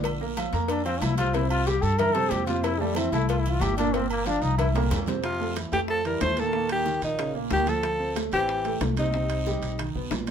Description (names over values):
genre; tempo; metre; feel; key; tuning
Afro-Cuban jazz; 185 BPM; 4/4; straight; F major; A4 = 440 Hz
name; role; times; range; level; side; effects
warm baby grand piano; accompaniment; 0.0-10.3 s; Bb2 to Bb5; -30 LUFS; right 4 dB; none
upright bass; bass; 0.0-10.3 s; G1 to G2; -29 LUFS; left 1 dB; none
congas; percussion; 0.0-10.3 s; none; -37 LUFS; right 2 dB; none
cowbell and bongos; percussion; 0.0-10.3 s; none; -34 LUFS; left 7 dB; none
guiro; percussion; 0.0-10.3 s; none; -43 LUFS; right 5 dB; none
agogo bells and timbales; percussion; 0.1-10.3 s; none; -36 LUFS; right 4 dB; none
bright trombone; second line; 0.7-9.8 s; Bb2 to Bb4; -29 LUFS; left 2 dB; none
bright alto saxophone; melody; 5.2-9.9 s; Eb4 to C5; -26 LUFS; equal; none
room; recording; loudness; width
moderate studio reverb, RT60 0.6 s; minimal, uncompressed stereo recording; -23 LUFS; side -8 dB against mid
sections
0.0-5.2 A section; 5.2-10.3 B section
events
trombone solo 0.0-5.2; drum fill 4.7-5.2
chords
0.0 Bb; 1.3 C; 2.6 Fmaj9; 3.9 Gm7; 4.6 C7; 5.2 Fmaj7; 6.5 Eb7; 7.8 Dm11; 9.1 Cm; 9.8 B